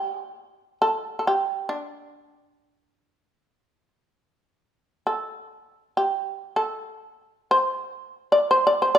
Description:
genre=japanese traditional, Japanese chamber music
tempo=free time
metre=none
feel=none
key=unclear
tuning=A4 = 439 Hz
part: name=shamisen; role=solo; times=0.0-9.0 s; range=D4 to D5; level=-21 LUFS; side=equal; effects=none
room=moderate recital hall reverb, RT60 1.4 s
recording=minimal, uncompressed stereo recording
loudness=-22 LUFS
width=side -10 dB against mid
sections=0.0-4.3 A section; 4.3-9.0 A section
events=none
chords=none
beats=free time

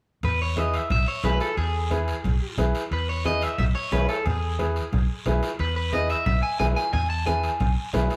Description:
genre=latin, cumbia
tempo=179 BPM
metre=4/4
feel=straight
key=E major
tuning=A4 = 439 Hz
part: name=electric guitar at the edge of break-up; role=melody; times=0.2-7.9 s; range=G#4 to A5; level=-30 LUFS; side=equal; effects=spring reverb
part: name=fingered electric bass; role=bass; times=0.2-8.1 s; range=B1 to E2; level=-28 LUFS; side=equal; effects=none
part: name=congas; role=percussion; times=0.2-8.1 s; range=none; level=-34 LUFS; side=equal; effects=none
part: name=guiro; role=percussion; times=0.2-8.2 s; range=none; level=-42 LUFS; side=equal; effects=none
part: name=timbales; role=percussion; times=0.2-8.2 s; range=none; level=-40 LUFS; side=equal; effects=none
part: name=clear upright piano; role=accompaniment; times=0.6-8.2 s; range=E4 to C#5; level=-31 LUFS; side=equal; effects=none
room=moderate small room reverb, RT60 0.5 s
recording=band playing live in one room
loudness=-25 LUFS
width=mono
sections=0.2-8.2 A section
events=none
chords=0.2 E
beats=| 0.23 0.57 0.91 1.24 | 1.58 1.91 2.25 2.58 | 2.92 3.25 3.59 3.92 | 4.26 4.59 4.92 5.26 | 5.59 5.93 6.26 6.60 | 6.93 7.27 7.60 7.94

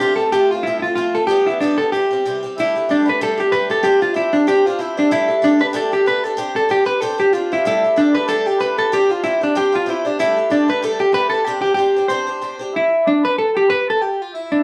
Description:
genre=celtic folk, Celtic reel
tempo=189 BPM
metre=4/4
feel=swing 56% on 8ths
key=C major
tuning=A4 = 441 Hz
part: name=hollow-body jazz guitar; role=melody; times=0.0-14.6 s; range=D4 to C5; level=-18 LUFS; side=equal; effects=none
part: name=mellow accordion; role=second line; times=0.0-14.6 s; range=D4 to C5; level=-28 LUFS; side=equal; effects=none
part: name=picked swing-style acoustic guitar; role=accompaniment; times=0.0-12.7 s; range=C3 to C5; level=-26 LUFS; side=equal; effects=none
room=wet studio reverb, RT60 0.5 s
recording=band playing live in one room, studio ambience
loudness=-17 LUFS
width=mono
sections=0.0-2.6 A section; 2.6-12.7 B section; 12.7-14.6 B section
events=none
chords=0.0 F; 1.3 G; 1.9 C; 2.6 Gsus2; 3.8 Csus2; 5.1 Gsus2; 6.4 Csus2; 7.7 Gsus2; 8.9 Csus2; 10.2 Gsus2; 11.5 Csus2; 12.7 N.C.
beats=| 0.03 0.34 0.66 0.98 | 1.30 1.61 1.93 2.25 | 2.57 2.88 3.20 3.52 | 3.84 4.15 4.47 4.79 | 5.11 5.42 5.74 6.06 | 6.38 6.70 7.01 7.33 | 7.65 7.97 8.29 8.60 | 8.92 9.24 9.56 9.88 | 10.19 10.51 10.83 11.14 | 11.46 11.78 12.10 12.41 | 12.73 13.05 13.37 13.68 | 14.00 14.32

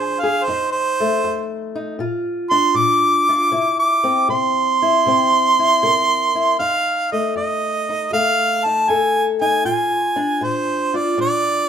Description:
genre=acoustic country blues, solo or duo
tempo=78 BPM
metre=4/4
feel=swing 68% on 8ths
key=F mixolydian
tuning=A4 = 440 Hz
part: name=warm harmonica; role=melody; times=0.0-11.7 s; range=C5 to D6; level=-16 LUFS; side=right 2 dB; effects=none
part: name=fingerpicked old ladder-braced acoustic guitar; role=accompaniment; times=0.0-11.7 s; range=F2 to Bb4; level=-22 LUFS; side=left 4 dB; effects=none
room=moderate large studio reverb, RT60 1.2 s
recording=band playing live in one room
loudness=-15 LUFS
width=side -8 dB against mid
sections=0.0-6.6 A section; 6.6-11.7 B section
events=harmonica solo 0.0-6.6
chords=0.5 F7; 2.0 Bb; 3.5 C7; 6.6 F7; 9.7 Bb7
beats=| 0.46 1.23 1.99 2.76 | 3.52 4.29 5.05 5.82 | 6.58 7.35 8.12 8.88 | 9.65 10.42 11.19

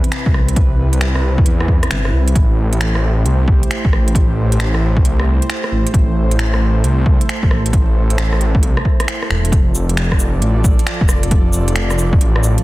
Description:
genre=future garage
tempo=134 BPM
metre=4/4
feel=swing 65% on 16ths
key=A minor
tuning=A4 = 440 Hz
part: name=airy breathy pad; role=sustained chords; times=0.0-12.6 s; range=C3 to D5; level=-23 LUFS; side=right 1 dB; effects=chorus, sidechain pumping
part: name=swelling detuned saw bass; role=bass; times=0.0-12.6 s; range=E1 to E2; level=-16 LUFS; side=equal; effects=sidechain pumping
part: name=organic electronic drum kit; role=drums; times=0.0-12.6 s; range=cabasa, finger snaps, hi-hat, rim click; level=-23 LUFS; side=equal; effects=soft clipping on snare
part: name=electronic kick drum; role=drums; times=0.3-12.2 s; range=none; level=-14 LUFS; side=equal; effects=overdrive
room=little or no reverb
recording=dense, heavily limited modern master, vinyl crackle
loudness=-12 LUFS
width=side -18 dB against mid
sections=0.0-9.5 A section; 9.5-12.6 B section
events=break 9.1-9.5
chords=0.0 Cmaj7; 2.4 Am7; 9.5 F6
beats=0.12 | 0.56 1.01 1.46 1.91 | 2.36 2.80 3.25 3.70 | 4.15 4.59 5.04 5.49 | 5.94 6.39 6.83 7.28 | 7.73 8.18 8.62 9.07 | 9.52 9.97 10.42 10.86 | 11.31 11.76 12.21

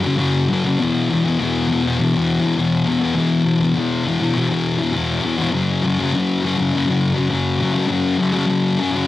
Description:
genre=rock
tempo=102 BPM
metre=4/4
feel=straight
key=unclear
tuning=A4 = 440 Hz
part: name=thick fuzz guitar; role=solo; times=0.0-9.1 s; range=E2 to F#3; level=-16 LUFS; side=left 2 dB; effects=distortion, cassette tape
room=digital ambience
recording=home recording on cassette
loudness=-16 LUFS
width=side -14 dB against mid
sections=0.0-9.1 A section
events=none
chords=0.0 F#5; 0.8 E5; 5.5 F#5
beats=0.21 | 0.81 1.40 1.99 2.58 | 3.17 3.76 4.35 4.94 | 5.53 6.12 6.71 7.30 | 7.89 8.48 9.07

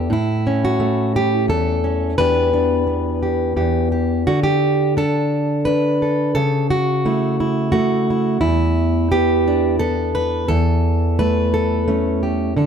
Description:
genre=folk, solo fingerstyle acoustic guitar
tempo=87 BPM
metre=3/4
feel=straight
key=unclear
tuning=A4 = 440 Hz
part: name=fingerpicked plugged-in steel-string acoustic guitar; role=solo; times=0.0-12.7 s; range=E2 to B4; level=-16 LUFS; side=equal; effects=none
room=light reverb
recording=close, detailed microphones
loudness=-16 LUFS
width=side -7 dB against mid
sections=0.0-4.3 A section; 4.3-12.7 B section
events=none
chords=0.1 A; 2.2 Em7; 4.3 D5; 6.3 A/C#; 8.4 Em7; 10.5 A7/E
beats=| 0.12 0.81 1.49 | 2.18 2.87 3.57 | 4.28 4.97 5.66 | 6.35 7.04 7.72 | 8.41 9.10 9.79 | 10.48 11.17 11.87 | 12.56

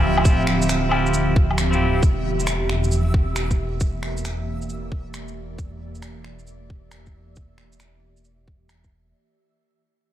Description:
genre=future garage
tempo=135 BPM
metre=4/4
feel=swing 66% on 16ths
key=unclear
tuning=A4 = 436 Hz
part: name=clean electric guitar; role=accompaniment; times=0.0-2.0 s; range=C4 to G4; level=-26 LUFS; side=left 2 dB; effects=sidechain pumping, tape echo
part: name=ethereal airy pad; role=sustained chords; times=0.0-9.1 s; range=D3 to E5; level=-26 LUFS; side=right 2 dB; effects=ensemble chorus, built-in reverb, sidechain pumping
part: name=dark detuned saw bass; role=bass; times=0.0-9.1 s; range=D1 to E1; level=-25 LUFS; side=equal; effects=sidechain pumping
part: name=backwards swelling texture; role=texture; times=0.0-9.2 s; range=E5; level=-34 LUFS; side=equal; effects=built-in reverb
part: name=electronic woodblock, shaker and finger snaps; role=drums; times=0.2-8.9 s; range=none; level=-27 LUFS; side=left 1 dB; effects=none
part: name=electronic kick drum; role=drums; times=0.3-8.9 s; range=none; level=-18 LUFS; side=equal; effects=none
room=light reverb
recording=vinyl crackle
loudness=-19 LUFS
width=side -12 dB against mid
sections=0.0-9.1 A section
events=fade-out 0.0-9.1; filter sweep on detuned saw bass 0.0-9.1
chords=0.0 Dm11; 2.0 Em7b5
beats=| 0.25 0.69 1.14 1.58 | 2.03 2.47 2.92 3.36 | 3.81 4.25 4.69 5.14 | 5.58 6.03 6.47 6.92 | 7.36 7.80 8.25 8.69

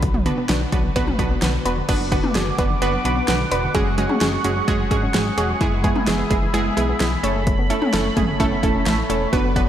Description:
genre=synth-pop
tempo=129 BPM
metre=4/4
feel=straight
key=unclear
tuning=A4 = 441 Hz
part: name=wide unison pluck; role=accompaniment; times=0.0-9.7 s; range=G#3 to B4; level=-22 LUFS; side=right 2 dB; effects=slapback echo
part: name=soft round pluck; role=arpeggios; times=0.0-9.6 s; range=D3 to C#6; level=-28 LUFS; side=left 4 dB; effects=chorus, slapback echo
part: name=smooth synth bass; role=bass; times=0.0-9.7 s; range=E1 to B1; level=-25 LUFS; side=equal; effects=none
part: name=deep house drum kit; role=drums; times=0.0-9.7 s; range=crash cymbal, hi-hat, kick drum, snare drum, toms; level=-22 LUFS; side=equal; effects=overdrive
part: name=sweeping resonant pad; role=sustained chords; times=1.9-9.7 s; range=F#4 to D6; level=-26 LUFS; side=right 1 dB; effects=chorus
room=moderate lush hall reverb, RT60 1.9 s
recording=big arena sound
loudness=-17 LUFS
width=side -10 dB against mid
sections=0.0-1.9 A section; 1.9-9.7 B section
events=none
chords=0.0 Bm; 1.9 Bm/F#; 3.7 F#sus2; 5.6 E/F#; 7.2 Aadd9/F#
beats=| 0.03 0.49 0.96 1.42 | 1.89 2.35 2.82 3.28 | 3.75 4.21 4.68 5.14 | 5.61 6.07 6.54 7.00 | 7.47 7.93 8.40 8.86 | 9.33

